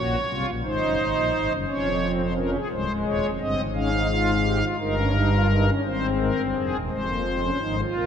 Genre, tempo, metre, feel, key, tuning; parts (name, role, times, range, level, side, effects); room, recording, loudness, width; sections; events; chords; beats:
classical, baroque-style 3-part fugue for pipe organ; 57 BPM (dotted quarters); 6/8; straight; A4 = 442 Hz
pipe organ, strings celeste; solo; 0.0-8.1 s; C1 to F5; -21 LUFS; equal
wet cathedral reverb, RT60 5.3 s; in a vast, echoing space; -21 LUFS; side -8 dB against mid
0.0-6.9 A section; 6.9-8.1 B section
0.0 Gb; 0.6 Ab7; 1.7 Db/F; 2.7 Ab/C; 3.7 Db/Ab; 4.8 Eb7/G; 5.8 Ab; 6.9 Fm
| 0.63 1.66 | 2.69 3.74 | 4.79 5.84 | 6.90 7.95